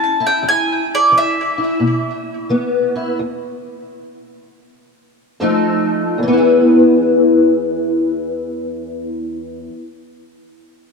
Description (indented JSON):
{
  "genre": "acoustic country blues, solo or duo",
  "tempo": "76-88 BPM",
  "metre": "4/4",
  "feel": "swing 66% on 8ths",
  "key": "E major",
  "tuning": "A4 = 438 Hz",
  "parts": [
    { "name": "mandolin", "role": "melody", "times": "0.0-5.4 s", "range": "D5 to A5", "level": "-16 LUFS", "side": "right 1 dB", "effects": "ping-pong delay" },
    { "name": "fingerpicked steel-string acoustic guitar", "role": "accompaniment", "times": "0.0-9.9 s", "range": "E2 to A4", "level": "-15 LUFS", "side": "left 2 dB", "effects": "ensemble chorus" }
  ],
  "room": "wet plate reverb, RT60 3.4 s",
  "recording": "dreamy mix soaked in reverb",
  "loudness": "-13 LUFS",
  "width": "side -4 dB against mid",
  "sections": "0.0-6.2 A section; 6.2-9.4 B section",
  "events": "slowing down 0.4-6.2; stop 3.2-5.4",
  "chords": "0.4 E5; 3.2 N.C.; 5.4 F7; 6.2 E",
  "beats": "| 0.44 1.12 1.80 2.50 | 3.20 3.92 4.66 5.41 | 6.19 6.98 7.77 8.56"
}